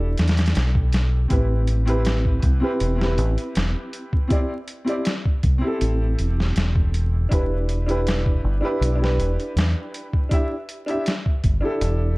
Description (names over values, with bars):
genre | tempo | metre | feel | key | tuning
trip hop | 80 BPM | 4/4 | straight | A minor | A4 = 440 Hz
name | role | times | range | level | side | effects
warm upright piano | accompaniment | 0.0-12.2 s | C4 to E5 | -26 LUFS | equal | harmonic tremolo, tape echo
deep dub fingered electric bass | bass | 0.0-12.1 s | E1 to E2 | -20 LUFS | equal | none
boom bap sampler-style drum kit | drums | 0.2-12.0 s | hi-hat, kick drum, snare drum | -22 LUFS | equal | small room reverb
room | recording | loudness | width
digital ambience | dark, warm production, vinyl crackle | -19 LUFS | side -23 dB against mid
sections
0.0-12.2 A section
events
kick drops out 11.8-12.2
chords
0.0 Em7; 1.3 Am7; 7.3 Em7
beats
0.56 | 1.31 2.06 2.81 3.56 | 4.31 5.06 5.81 6.56 | 7.31 8.06 8.81 9.56 | 10.31 11.06 11.81